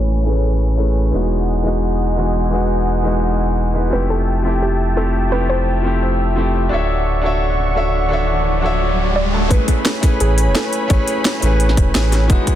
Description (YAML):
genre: liquid drum and bass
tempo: 172 BPM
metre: 4/4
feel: straight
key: A major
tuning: A4 = 438 Hz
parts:
  - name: soft round pluck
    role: melody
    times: 0.0-0.2, 3.9-5.8, 9.2-11.6 s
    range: G4 to D5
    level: -26 LUFS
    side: equal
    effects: chorus, dub echo
  - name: clear grand piano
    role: accompaniment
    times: 0.0-12.6 s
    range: E3 to A5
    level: -20 LUFS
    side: left 2 dB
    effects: digital delay
  - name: warm analog pad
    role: sustained chords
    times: 0.0-12.6 s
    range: C#5 to C#6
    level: -25 LUFS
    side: right 2 dB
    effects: chorus, sidechain pumping
  - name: sub bass with octave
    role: bass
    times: 0.0-12.4 s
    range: D1 to A1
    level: -18 LUFS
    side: equal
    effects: tube saturation
  - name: downlifter and riser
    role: sound effects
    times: 0.0-1.1, 7.3-9.5 s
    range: none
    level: -26 LUFS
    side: equal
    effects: none
  - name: drum and bass drum kit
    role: drums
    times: 9.5-12.5 s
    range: hi-hat, snare drum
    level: -20 LUFS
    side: equal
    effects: studio reverb
  - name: electronic kick drum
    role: drums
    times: 9.5-12.5 s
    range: none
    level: -14 LUFS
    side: equal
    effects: studio reverb
room: light reverb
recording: dense, heavily limited modern master, low-pass filter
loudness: -14 LUFS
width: side -11 dB against mid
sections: 0.0-9.5 A section; 9.5-12.6 B section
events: filter sweep 0.0-9.5; riser 7.3-9.5; drop 9.5-12.6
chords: 0.0 Amaj9; 1.1 Emaj9; 3.9 Fmaj9; 6.7 Dmaj9; 9.5 Amaj9